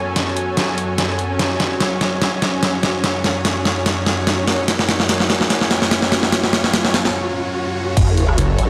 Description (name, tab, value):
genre	heavy wobble dubstep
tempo	146 BPM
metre	4/4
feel	swing 54% on 16ths, half-time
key	F# minor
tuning	A4 = 439 Hz
part	supersaw pad	sustained chords	0.0-8.7 s	F#2 to C#5	-25 LUFS	equal	vintage 12-bit sampler grit, sidechain pumping
part	riser and sub drop	sound effects	0.0-8.7 s	none	-28 LUFS	equal	none
part	muted studio string section	texture	0.0-7.1 s	F#4 to G#5	-29 LUFS	equal	sidechain pumping
part	dubstep drum kit	drums	0.2-8.7 s	crash cymbal, hi-hat, rim click, snare drum	-20 LUFS	equal	none
part	formant-sweep wobble bass	bass	8.0-8.7 s	F#1 to A1	-21 LUFS	equal	chorus, overdrive
part	electronic kick drum	drums	8.0-8.1 s	none	-19 LUFS	equal	none
part	snarling distorted saw bass	bass	8.4-8.6 s	F#1	-19 LUFS	equal	overdrive
room	moderate lush hall reverb, RT60 1.9 s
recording	none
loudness	-18 LUFS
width	mono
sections	0.0-8.0 A section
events	build-up 0.0-8.0; drum fill 0.0-7.1; break 7.1-8.0; impact 8.0-8.7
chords	0.0 F#m